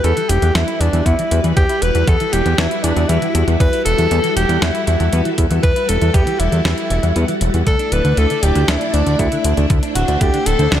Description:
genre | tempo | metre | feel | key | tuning
synthwave | 118 BPM | 4/4 | straight | E minor | A4 = 440 Hz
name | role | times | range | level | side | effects
mellow tenor saxophone | melody | 0.0-10.8 s | D4 to B4 | -19 LUFS | left 1 dB | tape echo
string machine, full ensemble | sustained chords | 0.0-10.8 s | G3 to D5 | -23 LUFS | equal | ensemble chorus, sidechain pumping
clean electric guitar | riff | 0.0-10.8 s | D3 to E4 | -26 LUFS | equal | lush chorus, ping-pong delay
fat analog bass | bass | 0.0-10.8 s | D1 to E2 | -16 LUFS | equal | tube saturation
clean 12-bit digital drum machine | drums | 0.0-10.8 s | hi-hat, snare drum | -23 LUFS | equal | none
electronic kick drum | drums | 1.1-10.3 s | none | -16 LUFS | equal | none
room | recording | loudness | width
light reverb, digital ambience | none | -13 LUFS | side -10 dB against mid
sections
0.0-10.8 A section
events
none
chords
0.0 Emadd9; 7.7 Dsus2

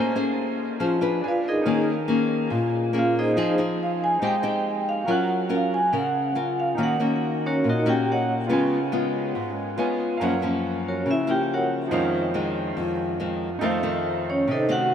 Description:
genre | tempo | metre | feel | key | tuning
bossa nova | 140 BPM | 4/4 | straight | Ab major | A4 = 439 Hz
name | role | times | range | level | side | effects
clear grand piano | accompaniment | 0.0-14.9 s | F3 to Gb6 | -31 LUFS | right 4 dB | none
nylon-string guitar | accompaniment | 0.0-14.9 s | F2 to C5 | -24 LUFS | left 2 dB | wide subtle chorus
vibraphone with medium hard mallets | melody | 1.3-8.3, 10.9-11.7, 14.3-14.9 s | Db4 to Ab5 | -26 LUFS | right 1 dB | ping-pong delay
room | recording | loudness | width
moderate huge ambient reverb, RT60 8.9 s | dreamy mix soaked in reverb | -21 LUFS | side -8 dB against mid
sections
0.0-5.1 A section; 5.1-14.9 A section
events
vibraphone solo 0.0-14.9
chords
0.0 Bbm9; 1.2 Bb7b9; 1.7 Eb7sus4; 3.4 Fm7; 4.2 Abmaj7; 5.1 Gbmaj7; 6.8 Ebm7; 8.5 Db7; 10.2 Gbmaj7; 11.9 Dbmaj9/F; 13.6 F7

